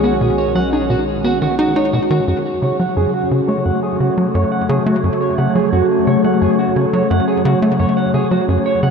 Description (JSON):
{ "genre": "ambient, sequencer-driven space music", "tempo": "87 BPM", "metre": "4/4", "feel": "straight", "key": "F# dorian", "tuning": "A4 = 438 Hz", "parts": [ { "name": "phased analog pad", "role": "sustained chords", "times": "0.0-8.9 s", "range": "C#3 to G#4", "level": "-17 LUFS", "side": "equal", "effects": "phaser, chorus" }, { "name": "electric guitar at the edge of break-up", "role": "arpeggios", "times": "0.0-8.9 s", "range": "F#4 to F#5", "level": "-21 LUFS", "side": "moving between left 1 dB and right 6 dB", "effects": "auto-pan, low-pass filter, ping-pong delay" }, { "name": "tight sequencer bass", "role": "riff", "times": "0.0-8.9 s", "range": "F#2 to D#4", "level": "-18 LUFS", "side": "left 1 dB", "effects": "ping-pong delay" }, { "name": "warm sub bass", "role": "bass", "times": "0.0-2.2 s", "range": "B1", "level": "-29 LUFS", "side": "equal", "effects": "none" }, { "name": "wind-like tuned noise texture", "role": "texture", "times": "3.0-8.9 s", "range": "C#5", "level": "-26 LUFS", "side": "right 3 dB", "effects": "built-in reverb" } ], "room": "wet huge ambient reverb, RT60 7.7 s", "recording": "none", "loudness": "-14 LUFS", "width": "side -6 dB against mid", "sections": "0.0-2.3 A section; 2.3-8.9 B section", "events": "filter sweep on clean electric guitar 2.3-8.9", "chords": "0.0 B6; 2.3 F#m" }